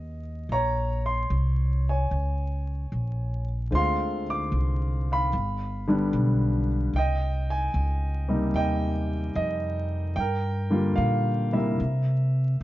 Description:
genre	jazz ballad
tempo	74 BPM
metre	4/4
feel	swing 69% on 8ths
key	unclear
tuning	A4 = 440 Hz
part	warm concert grand piano	accompaniment	0.0-12.6 s	C3 to D6	-27 LUFS	equal	none
part	upright bass	bass	0.0-12.6 s	G1 to C3	-26 LUFS	equal	none
room	light reverb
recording	vinyl crackle, nothing above 7.6 kHz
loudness	-24 LUFS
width	side -15 dB against mid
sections	0.0-12.6 A section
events	none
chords	0.5 Bbm9; 3.7 Dm7b5; 5.3 G7; 6.9 Cm7; 10.2 Gm7; 11.8 C7

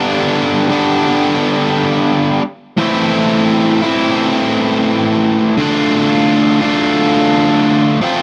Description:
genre	rock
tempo	86 BPM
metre	4/4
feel	straight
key	unclear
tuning	A4 = 440 Hz
part	overdriven electric guitar	solo	0.0-8.2 s	G2 to F4	-14 LUFS	equal	none
room	little or no reverb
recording	dry, close 1970s-style studio recording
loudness	-14 LUFS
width	mono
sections	0.0-8.2 A section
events	none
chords	0.0 G; 2.8 Am; 5.6 Dm

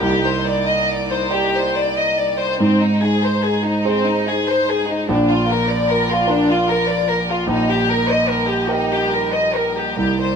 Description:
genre	neoclassical piano and strings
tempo	46-50 BPM (dotted quarters)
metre	6/8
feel	rubato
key	unclear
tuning	A4 = 440 Hz
part	warm chamber violin section	melody	0.0-10.4 s	C4 to Eb5	-18 LUFS	left 2 dB	none
part	warm grand piano	accompaniment	0.0-10.4 s	Bb1 to D5	-20 LUFS	right 2 dB	none
part	dark studio string section	sustained chords	0.0-10.4 s	F3 to Eb5	-27 LUFS	right 2 dB	none
room	wet stone room reverb, RT60 1.3 s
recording	band playing live in one room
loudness	-15 LUFS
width	side -6 dB against mid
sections	0.0-10.4 A section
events	none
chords	0.0 Cmadd9; 2.6 Ab; 5.1 Bb; 7.5 Eb/Bb

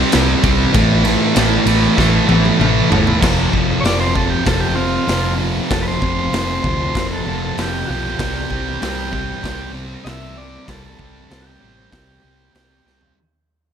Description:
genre	garage rock duo or trio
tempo	96 BPM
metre	4/4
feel	straight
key	unclear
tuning	A4 = 440 Hz
part	thick fuzz guitar	riff	0.0-13.2 s	F2 to C4	-17 LUFS	right 1 dB	distortion
part	hollow-body short-scale fingered electric bass	bass	0.1-13.1 s	F1 to D2	-22 LUFS	left 1 dB	none
part	raw garage drum kit	drums	0.1-13.2 s	crash cymbal, hi-hat, kick drum, ride cymbal, snare drum, toms	-20 LUFS	equal	none
part	overdriven combo organ	melody	3.8-13.1 s	C4 to E5	-24 LUFS	right 1 dB	spring reverb, tape echo
room	light reverb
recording	none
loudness	-14 LUFS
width	side -8 dB against mid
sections	0.0-3.2 A section; 3.2-13.2 B section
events	drum fill 2.0-3.2, 12.9-13.2; fade-out 3.2-13.2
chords	0.0 C5; 0.7 A5; 3.2 F5; 8.2 C5

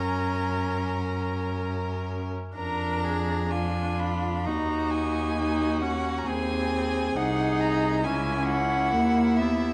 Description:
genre	classical, slow romantic movement for string quartet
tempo	60-68 BPM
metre	4/4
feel	rubato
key	unclear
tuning	A4 = 440 Hz
part	rich violin	melody	0.0-9.7 s	E5 to B5	-34 LUFS	equal	none
part	clear violin	second line	0.0-9.7 s	E4 to A#4	-35 LUFS	equal	none
part	rich viola	accompaniment	0.0-9.7 s	A#3 to D#4	-31 LUFS	equal	none
part	clear cello	bass	0.0-9.7 s	B#1 to F#2	-32 LUFS	equal	none
room	wet recital hall reverb, RT60 1.4 s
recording	dark, warm production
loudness	-27 LUFS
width	mono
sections	0.0-9.7 A section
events	none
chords	0.0 F#; 2.6 A#7/E#; 4.5 D#m; 6.3 G#/D#; 8.1 C#m

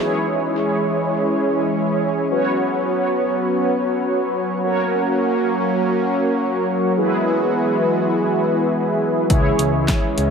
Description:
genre	synth-pop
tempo	free time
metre	none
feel	none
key	C# dorian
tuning	A4 = 440 Hz
part	mellow synth brass	accompaniment	0.0-10.3 s	E4 to C#5	-19 LUFS	equal	chorus, tape echo, shimmer reverb
part	warm analog pad	sustained chords	0.0-10.3 s	E3 to F#4	-22 LUFS	equal	chorus, shimmer reverb
part	smooth synth bass	bass	9.3-10.3 s	C#2	-21 LUFS	equal	none
part	punchy analog drum machine	drums	9.3-10.3 s	handclaps, hi-hat, kick drum, snare drum	-20 LUFS	equal	tape echo
room	moderate spring reverb, RT60 1.6 s, digital ambience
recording	echo-heavy mix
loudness	-17 LUFS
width	side -6 dB against mid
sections	0.0-10.3 A section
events	none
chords	0.0 C#m; 2.3 Bsus2; 4.6 F#; 7.0 Eadd9; 9.3 C#m

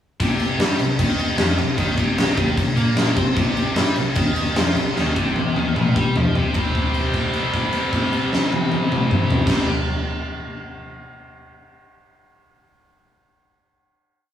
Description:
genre	hard rock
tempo	152 BPM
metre	4/4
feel	straight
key	C minor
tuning	A4 = 439 Hz
part	heavy high-gain guitar	riff	0.2-9.7 s	Bb2 to C4	-23 LUFS	left 1 dB	distortion
part	picked electric bass	bass	0.2-9.6 s	Bb1 to C3	-25 LUFS	equal	none
part	big rock drum kit	drums	0.2-9.6 s	crash cymbal, kick drum, snare drum, toms	-20 LUFS	left 1 dB	none
room	moderate studio reverb, RT60 0.6 s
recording	rough rehearsal-room recording, small room ambience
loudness	-17 LUFS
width	side -10 dB against mid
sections	0.2-6.6 riff; 6.6-9.7 final chord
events	drum fill 5.0-6.6; held note 6.6-9.5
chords	0.2 Cm; 6.6 C5

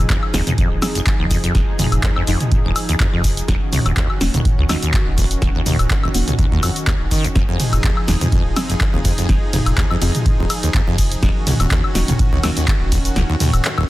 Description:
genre	acid house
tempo	124 BPM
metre	4/4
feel	swing 54% on 16ths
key	F phrygian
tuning	A4 = 439 Hz
part	lush unison pad	sustained chords	0.0-13.9 s	Eb3 to Ab4	-26 LUFS	equal	chorus, sidechain pumping
part	saturated sub bass	bass	0.0-13.6 s	Eb1 to Eb2	-20 LUFS	equal	sidechain pumping
part	acid bass, saw	riff	0.1-13.8 s	Eb1 to Eb3	-22 LUFS	equal	tube saturation, wide subtle chorus, sidechain pumping, tape echo
part	electronic kick drum	drums	0.1-13.0 s	none	-18 LUFS	equal	none
part	punchy analog drum machine	drums	0.1-13.9 s	handclaps, hi-hat, ride cymbal, shaker, snare drum, toms, woodblock	-21 LUFS	equal	none
part	deep mellow chord stab	stabs	0.3-12.6 s	Bb3 to Ab4	-28 LUFS	equal	chorus, phaser, cassette tape, tape echo
room	little or no reverb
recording	dense, heavily limited modern master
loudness	-15 LUFS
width	side -17 dB against mid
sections	0.0-13.9 A section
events	kick drops out 13.2-13.9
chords	0.0 Fm7; 3.5 Ebm7; 7.4 Fm7; 11.2 Ebm7

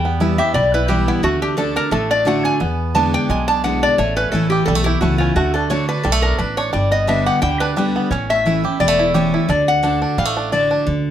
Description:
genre	bluegrass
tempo	174 BPM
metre	4/4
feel	swing 54% on 8ths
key	D major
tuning	A4 = 440 Hz
part	lap resonator guitar	melody	0.0-10.8 s	E4 to A5	-19 LUFS	left 1 dB	none
part	picked steel-string acoustic guitar	accompaniment	0.0-11.1 s	E2 to G4	-20 LUFS	equal	none
part	bluegrass banjo	arpeggios	0.0-10.9 s	G3 to G4	-23 LUFS	right 4 dB	none
part	upright bass	bass	0.0-11.1 s	E1 to E2	-23 LUFS	equal	none
room	moderate studio reverb, RT60 0.5 s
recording	none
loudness	-15 LUFS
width	side -10 dB against mid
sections	0.0-10.9 A section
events	none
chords	0.0 Em; 1.2 D; 2.6 E7; 4.0 A; 5.4 D; 6.7 G; 8.1 A; 9.5 D

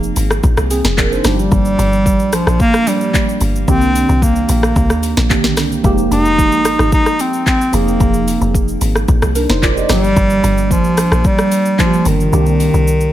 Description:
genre	amapiano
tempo	111 BPM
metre	4/4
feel	straight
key	unclear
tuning	A4 = 437 Hz
part	tine electric piano	accompaniment	0.0-13.1 s	D3 to Eb5	-19 LUFS	right 2 dB	phaser
part	deep log drum bass	bass	0.0-13.1 s	F1 to Eb2	-17 LUFS	equal	none
part	afro-pop drum kit	drums	0.0-13.1 s	handclaps, hi-hat, kick drum, rim click, shaker, snare drum	-16 LUFS	equal	none
part	warm bass clarinet	melody	1.3-13.1 s	Eb3 to Eb4	-15 LUFS	equal	tape echo
room	light reverb, digital ambience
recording	faint mains hum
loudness	-11 LUFS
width	side -13 dB against mid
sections	0.0-13.1 A section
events	kick muted 12.3-13.1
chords	0.0 Bb9sus4/F; 1.2 Gm7; 3.7 Cm9; 5.8 Fm11; 7.7 Bb9sus4/F; 9.9 Gm7; 12.3 Cm9

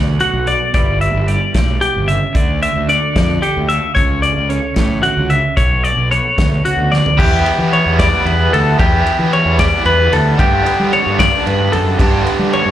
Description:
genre	math rock and midwest emo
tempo	75 BPM (dotted quarters)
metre	6/8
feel	straight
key	G lydian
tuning	A4 = 440 Hz
part	twelve-string electric guitar	accompaniment	0.0-7.2 s	G2 to F5	-21 LUFS	right 6 dB	spring reverb, slapback echo
part	fuzz fingered electric bass	bass	0.0-12.7 s	G1 to G3	-17 LUFS	equal	overdrive
part	twelve-string electric guitar	arpeggios	0.2-12.7 s	F#4 to E5	-16 LUFS	left 2 dB	slapback echo
part	loose indie drum kit	drums	0.2-12.7 s	crash cymbal, hi-hat, kick drum, ride cymbal, snare drum, toms	-18 LUFS	equal	none
part	biting overdriven guitar	riff	7.2-12.7 s	G2 to E4	-18 LUFS	right 3 dB	tremolo, slapback echo
room	little or no reverb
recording	live gig heard through the venue's PA, club reverb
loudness	-12 LUFS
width	side -12 dB against mid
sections	0.0-7.2 A section; 7.2-12.7 B section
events	drum fill 6.9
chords	0.0 Bm7; 0.7 G6; 2.3 Dm; 4.0 F#m7/C#; 5.6 Bm9; 7.2 Em7; 10.4 G

